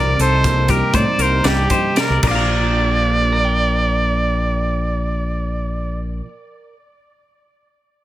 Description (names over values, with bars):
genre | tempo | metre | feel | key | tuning
math rock and midwest emo | 110-124 BPM | 5/4 | straight | Bb major | A4 = 440 Hz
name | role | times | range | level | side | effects
bright trumpet | melody | 0.0-6.0 s | G4 to D5 | -20 LUFS | right 1 dB | digital delay
twelve-string electric guitar | accompaniment | 0.0-6.8 s | G2 to G5 | -24 LUFS | right 3 dB | none
twelve-string electric guitar | arpeggios | 0.0-6.3 s | G4 to Bb5 | -23 LUFS | left 7 dB | wide subtle chorus
growling fingered electric bass | bass | 0.0-6.2 s | Bb1 to A2 | -20 LUFS | equal | overdrive
crisp fusion drum kit | drums | 0.2-2.4 s | crash cymbal, hi-hat, kick drum, snare drum | -22 LUFS | equal | none
room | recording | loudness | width
little or no reverb | none | -15 LUFS | side -14 dB against mid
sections
0.0-2.5 A section; 2.5-5.2 B section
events
slowing down 0.0-2.5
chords
0.0 Cm7; 2.2 Bb6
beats
0.44 0.94 1.45 1.97 | 2.51 3.05 3.60 4.15 4.69